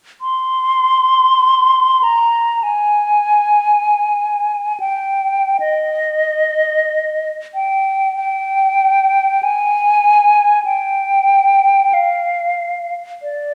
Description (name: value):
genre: classical, free, expressive piece for unaccompanied flute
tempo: 30-51 BPM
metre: 4/4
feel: rubato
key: unclear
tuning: A4 = 437 Hz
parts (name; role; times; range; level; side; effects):
- hollow concert flute; solo; 0.2-13.5 s; D5 to C6; -15 LUFS; equal; none
room: wet recital hall reverb, RT60 1.4 s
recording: heard from further back in the room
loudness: -15 LUFS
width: mono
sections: 0.2-5.6 A section; 5.6-13.5 B section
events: none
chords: none